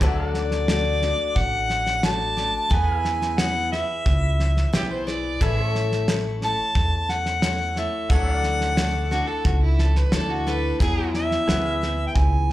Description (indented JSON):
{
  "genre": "honky-tonk and classic country",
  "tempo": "89 BPM",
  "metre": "4/4",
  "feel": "straight",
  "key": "unclear",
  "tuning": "A4 = 440 Hz",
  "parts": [
    { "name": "rich fiddle", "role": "second line", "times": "0.0-0.2, 4.7-11.1 s", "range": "D4 to E5", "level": "-28 LUFS", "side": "right 3 dB", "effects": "slapback echo" },
    { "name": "picked steel-string acoustic guitar", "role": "accompaniment", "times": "0.0-12.5 s", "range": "A2 to E5", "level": "-29 LUFS", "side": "left 5 dB", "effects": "slapback echo" },
    { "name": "pedal steel guitar", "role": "sustained chords", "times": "0.0-12.5 s", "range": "G#4 to F#5", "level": "-36 LUFS", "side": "left 1 dB", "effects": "none" },
    { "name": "upright bass", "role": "bass", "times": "0.0-12.5 s", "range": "A1 to E2", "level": "-24 LUFS", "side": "equal", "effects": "none" },
    { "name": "cloth-damped thuddy drum kit", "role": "drums", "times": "0.0-12.5 s", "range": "hi-hat, kick drum, snare drum", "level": "-25 LUFS", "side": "equal", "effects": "none" },
    { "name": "mellow harmonica", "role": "melody", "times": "0.4-12.5 s", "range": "D5 to A5", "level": "-24 LUFS", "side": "equal", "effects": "none" }
  ],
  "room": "light reverb",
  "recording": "live gig heard through the venue's PA, club reverb",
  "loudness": "-20 LUFS",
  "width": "side -15 dB against mid",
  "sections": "0.0-12.5 A section",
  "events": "none",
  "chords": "0.0 D; 2.7 E; 5.4 A; 8.1 Dadd9; 10.8 Eadd9"
}